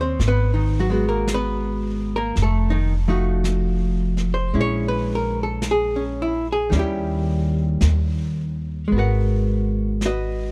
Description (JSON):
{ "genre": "jazz ballad", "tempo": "55 BPM", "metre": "4/4", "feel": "swing 67% on 8ths", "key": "G# minor", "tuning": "A4 = 440 Hz", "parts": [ { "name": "archtop guitar, miked and amplified", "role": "accompaniment", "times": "0.0-10.5 s", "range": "D#3 to F#5", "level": "-25 LUFS", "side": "equal", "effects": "none" }, { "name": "upright bass", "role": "bass", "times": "0.0-10.5 s", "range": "F1 to D#2", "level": "-24 LUFS", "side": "equal", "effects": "none" }, { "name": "jazz brush drum kit", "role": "drums", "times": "0.2-10.5 s", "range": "brushed snare drum, hi-hat, snare drum", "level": "-33 LUFS", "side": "equal", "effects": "none" } ], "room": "little or no reverb", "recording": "dark, warm production", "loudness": "-22 LUFS", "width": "mono", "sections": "0.0-8.9 A section; 8.9-10.5 B section", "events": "none", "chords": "0.2 G#m9; 2.4 F7b9; 4.5 A#m7b5; 6.7 D#7b9; 8.9 G#m9" }